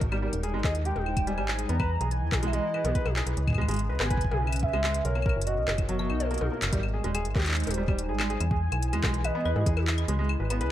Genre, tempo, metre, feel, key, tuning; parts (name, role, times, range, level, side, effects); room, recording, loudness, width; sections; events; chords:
IDM; 143 BPM; 4/4; straight; A4 = 439 Hz
hollow soft pad; sustained chords; 0.0-10.7 s; B2 to Fb5; -36 LUFS; equal; chorus, sidechain pumping
metallic FM bass; bass; 0.0-10.7 s; Eb1 to G#2; -29 LUFS; equal
electronic kick drum; drums; 0.0-9.7 s; -28 LUFS; equal
organic electronic drum kit; drums; 0.0-10.7 s; claves, handclaps, hi-hat, toms; -33 LUFS; left 3 dB; tape echo
felt-muted upright piano; arpeggios; 0.1-10.7 s; F#3 to B4; -34 LUFS; equal; vintage 12-bit sampler grit, dub echo
warm velvety synth lead; melody; 0.6-9.9 s; Db5 to Bb5; -34 LUFS; right 1 dB; chorus, dub echo
light reverb; echo-heavy mix; -25 LUFS; side -12 dB against mid
0.0-6.7 A section; 6.7-10.7 A section
kick drops out 5.9-6.7; band accent 6.6
0.0 Abmaj7; 1.7 Emaj7; 3.4 Dbm7; 5.0 Bmaj7; 6.7 Abmaj7; 8.4 Emaj7; 10.1 Dbm7